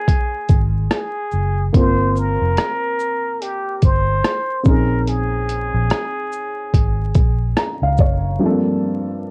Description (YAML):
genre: lo-fi hip hop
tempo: 72 BPM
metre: 4/4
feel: swing 59% on 16ths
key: unclear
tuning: A4 = 441 Hz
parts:
  - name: trumpet with plunger mute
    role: melody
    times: 0.0-7.6 s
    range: G4 to C5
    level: -25 LUFS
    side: equal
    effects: none
  - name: dark upright piano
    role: accompaniment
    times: 0.0-9.3 s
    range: G2 to Bb5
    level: -24 LUFS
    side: equal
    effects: cassette tape
  - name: boom bap sampler-style drum kit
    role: drums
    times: 0.1-8.2 s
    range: hi-hat, kick drum, rim click, shaker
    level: -19 LUFS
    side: equal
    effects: none
  - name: vintage muted fingered electric bass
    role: bass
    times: 0.5-8.4 s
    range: F1 to Db2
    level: -22 LUFS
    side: equal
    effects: none
room: light reverb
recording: worn, warbling old tape, cassette tape, vinyl crackle, warbly pitch drift, nothing above 10.9 kHz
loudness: -19 LUFS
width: mono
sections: 0.0-8.4 A section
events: upright piano fill 7.2-8.4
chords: 0.0 Bbm7; 1.7 Gm7; 4.7 Bbm11; 8.4 Gm11